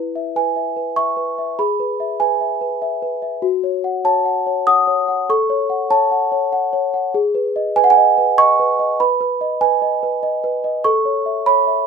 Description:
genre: classical, lullaby for celesta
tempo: 97 BPM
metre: 3/4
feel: straight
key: E major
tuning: A4 = 440 Hz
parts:
  - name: celesta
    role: solo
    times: 0.0-11.9 s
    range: E4 to D#6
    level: -15 LUFS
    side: right 1 dB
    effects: none
room: light reverb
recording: minimal, uncompressed stereo recording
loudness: -15 LUFS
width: side -6 dB against mid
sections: 0.0-11.9 A section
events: none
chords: 0.0 E; 1.6 E/G#; 3.4 F#m; 5.3 F#m/A; 7.1 G#m; 9.0 G#m/B; 10.8 A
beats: 0.35 0.97 | 1.59 2.20 2.82 | 3.44 4.05 4.67 | 5.29 5.90 6.52 | 7.13 7.75 8.37 | 8.99 9.61 10.23 | 10.85 11.46

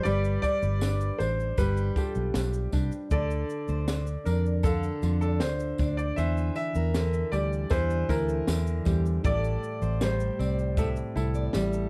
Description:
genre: acoustic pop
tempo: 78 BPM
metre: 4/4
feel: straight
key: D minor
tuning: A4 = 440 Hz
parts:
  - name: clear upright piano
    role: melody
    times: 0.0-11.9 s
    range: G4 to E5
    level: -35 LUFS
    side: equal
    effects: tape echo
  - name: nylon-string guitar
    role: accompaniment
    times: 0.0-11.9 s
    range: A2 to F4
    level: -35 LUFS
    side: equal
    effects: none
  - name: fingerpicked steel-string acoustic guitar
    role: arpeggios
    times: 0.1-11.5 s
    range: G4 to F5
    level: -41 LUFS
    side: equal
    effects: none
  - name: vintage muted fingered electric bass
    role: bass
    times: 0.1-11.9 s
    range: G1 to F2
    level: -30 LUFS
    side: equal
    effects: none
  - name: compact cocktail drum kit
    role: drums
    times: 0.1-11.9 s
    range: kick drum, shaker, snare drum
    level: -32 LUFS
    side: equal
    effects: none
  - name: tambourine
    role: percussion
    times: 0.1-11.7 s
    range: none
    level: -50 LUFS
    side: equal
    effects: none
room: light reverb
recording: dark, warm production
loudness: -28 LUFS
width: mono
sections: 0.0-11.9 A section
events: none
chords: 0.0 G7; 3.1 Dm; 6.2 Em7b5; 9.2 Am7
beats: | 0.05 0.82 1.58 2.35 | 3.12 3.88 4.65 5.41 | 6.18 6.95 7.71 8.48 | 9.24 10.01 10.77 11.54

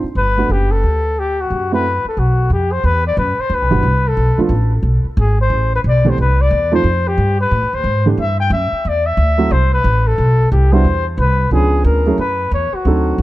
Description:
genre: jazz, small-group swing and bop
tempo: 180 BPM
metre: 4/4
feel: swing 62% on 8ths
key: E minor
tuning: A4 = 442 Hz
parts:
  - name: warm baby grand piano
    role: accompaniment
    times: 0.0-13.2 s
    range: E3 to A4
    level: -18 LUFS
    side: right 4 dB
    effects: none
  - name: upright bass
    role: bass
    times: 0.0-13.2 s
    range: F#1 to A2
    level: -15 LUFS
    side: equal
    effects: none
  - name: mellow trumpet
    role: melody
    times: 0.2-13.2 s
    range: F#4 to G5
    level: -18 LUFS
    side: left 2 dB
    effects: analog delay
room: light reverb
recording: dark, warm production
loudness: -13 LUFS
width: side -16 dB against mid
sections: 0.0-2.8 A section; 2.8-13.2 B section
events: none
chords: 0.2 Gmaj9; 1.5 F#m7b5; 2.2 B5; 2.8 Em9; 4.2 Bm7b5; 4.8 G#m; 5.5 Amadd9; 6.8 Fadd9; 8.2 G5; 9.5 Amadd9; 10.2 B5; 10.8 E5; 11.5 C#7b9; 12.2 Esus2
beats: | 0.17 0.50 0.84 1.17 | 1.50 1.84 2.17 2.51 | 2.84 3.18 3.51 3.84 | 4.18 4.51 4.84 5.18 | 5.51 5.85 6.18 6.51 | 6.85 7.18 7.51 7.85 | 8.18 8.51 8.85 9.18 | 9.52 9.85 10.18 10.52 | 10.85 11.18 11.52 11.85 | 12.19 12.52 12.86 13.19

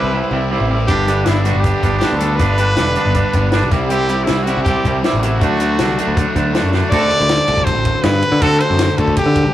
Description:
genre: indie rock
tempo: 159 BPM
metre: 4/4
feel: straight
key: unclear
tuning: A4 = 441 Hz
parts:
  - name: brilliant trumpet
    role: melody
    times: 0.0-9.5 s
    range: E4 to D5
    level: -19 LUFS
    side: equal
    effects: none
  - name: overdriven semi-hollow guitar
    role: riff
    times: 0.0-9.5 s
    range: G2 to A4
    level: -22 LUFS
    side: left 3 dB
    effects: spring reverb
  - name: overdriven semi-hollow guitar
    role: riff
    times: 0.0-9.5 s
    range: G2 to A4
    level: -20 LUFS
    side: right 3 dB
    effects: none
  - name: modern bright picked electric bass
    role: bass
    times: 0.0-9.5 s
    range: E1 to D3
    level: -18 LUFS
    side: equal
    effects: none
  - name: compact cocktail drum kit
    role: drums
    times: 0.9-9.4 s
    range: crash cymbal, hi-hat, kick drum, ride cymbal, snare drum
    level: -20 LUFS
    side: left 1 dB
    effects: none
room: wet studio ambience, RT60 0.5 s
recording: rough rehearsal-room recording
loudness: -13 LUFS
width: side -13 dB against mid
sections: 0.0-6.9 A section; 6.9-9.5 B section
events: drum fill 6.7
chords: 0.0 Cmaj7; 0.9 G; 3.7 C; 5.4 D; 6.9 D7(no3)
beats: 0.13 0.51 | 0.89 1.26 1.64 2.02 | 2.39 2.77 3.15 3.52 | 3.90 4.28 4.65 5.03 | 5.41 5.78 6.16 6.54 | 6.91 7.29 7.67 8.04 | 8.42 8.79 9.17

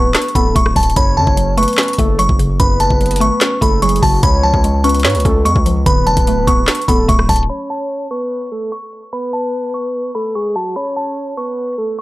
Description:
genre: hip hop, trap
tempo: 147 BPM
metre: 4/4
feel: half-time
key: F# harmonic minor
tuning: A4 = 440 Hz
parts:
  - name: delicate synth tine bell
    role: melody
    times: 0.0-12.0 s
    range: A5 to C#6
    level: -18 LUFS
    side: equal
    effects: chorus
  - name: soft octave-layered synth lead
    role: second line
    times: 0.0-12.0 s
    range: F#4 to C#5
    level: -20 LUFS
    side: equal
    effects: chorus, tape echo
  - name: mallet-like synth pluck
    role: accompaniment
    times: 0.0-7.5 s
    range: F#2 to C#5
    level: -20 LUFS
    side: equal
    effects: chorus, phaser
  - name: distorted 808-style bass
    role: bass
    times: 0.0-7.5 s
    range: D1 to G#2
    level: -17 LUFS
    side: equal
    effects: distortion
  - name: trap drum kit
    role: drums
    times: 0.1-12.0 s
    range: handclaps, hi-hat, kick drum, rim click, snare drum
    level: -15 LUFS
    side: equal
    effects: none
room: little or no reverb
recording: dry, gritty hardware recording, low-pass filter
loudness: -12 LUFS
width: side -18 dB against mid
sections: 0.0-7.5 A section; 7.5-12.0 B section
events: none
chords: 0.0 D6; 1.0 F#m; 4.2 C#; 5.9 D6; 7.5 N.C.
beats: 0.15 0.56 | 0.96 1.37 1.78 2.19 | 2.60 3.01 3.41 3.82 | 4.23 4.64 5.05 5.46 | 5.86 6.27 6.68 7.09 | 7.50 7.90 8.31 8.72 | 9.13 9.54 9.94 10.35 | 10.76 11.17 11.58 11.98

